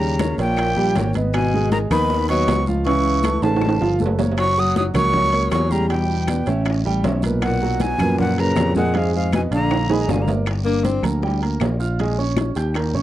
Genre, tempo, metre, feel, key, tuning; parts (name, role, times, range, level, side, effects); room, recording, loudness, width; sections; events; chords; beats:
Afro-Cuban jazz; 158 BPM; 4/4; straight; Eb minor; A4 = 440 Hz
breathy bright jazz flute; melody; 0.0-10.3 s; F5 to Eb6; -23 LUFS; right 1 dB
clear tenor saxophone; second line; 0.0-11.0 s; Ab2 to C4; -25 LUFS; left 5 dB
dark baby grand piano; accompaniment; 0.0-13.0 s; Bb2 to G6; -24 LUFS; right 3 dB
picked electric bass; bass; 0.0-13.0 s; Gb1 to F#2; -22 LUFS; equal
bongos; percussion; 0.0-13.0 s; -30 LUFS; left 6 dB
congas; percussion; 0.0-13.0 s; -27 LUFS; left 1 dB
claves; percussion; 0.2-12.9 s; -35 LUFS; left 9 dB
guiro; percussion; 0.2-13.0 s; -40 LUFS; right 7 dB
timbales; percussion; 0.2-13.0 s; -27 LUFS; right 6 dB
little or no reverb; dry, close 1970s-style studio recording; -17 LUFS; side -13 dB against mid
0.0-10.5 A section; 10.5-13.0 B section
drum fill 3.4-4.4, 9.7-10.5; tenor saxophone solo 10.5-13.0
0.0 Eb7; 1.3 Abm7; 2.9 Db7alt; 4.4 Gb; 5.9 Em7; 6.7 A9; 7.4 Bsus2; 8.9 Fm7b5; 9.7 Bb7; 10.5 Gm7; 12.0 Bbm7
0.20 0.58 0.96 | 1.34 1.72 2.10 2.48 | 2.86 3.24 3.62 4.00 | 4.38 4.76 5.14 5.52 | 5.91 6.29 6.67 7.05 | 7.43 7.81 8.19 8.57 | 8.95 9.33 9.71 10.09 | 10.47 10.85 11.23 11.62 | 12.00 12.38 12.76